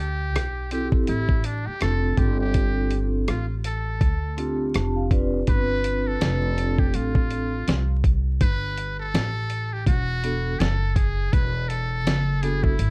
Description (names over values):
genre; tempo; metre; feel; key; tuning
hip hop, jazz-hop; 82 BPM; 4/4; swing 59% on 16ths; unclear; A4 = 439 Hz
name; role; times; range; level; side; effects
trumpet with metal mute; melody; 0.0-12.9 s; D4 to B4; -30 LUFS; equal; slapback echo, plate reverb
upright bass; bass; 0.0-12.9 s; E1 to D2; -25 LUFS; equal; none
dusty soul sampler-style drum kit; drums; 0.4-12.9 s; hi-hat, kick drum, rim click, snare drum; -22 LUFS; equal; none
vibraphone with medium mallets; accompaniment; 0.7-12.7 s; B3 to A5; -26 LUFS; right 1 dB; plate reverb
room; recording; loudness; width
light reverb; worn, warbling old tape, cassette tape, vinyl crackle, warbly pitch drift; -21 LUFS; side -29 dB against mid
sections
0.0-12.9 A section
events
vibraphone fill 4.4-5.5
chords
0.0 D9sus4; 2.2 G9sus4; 9.9 E9sus4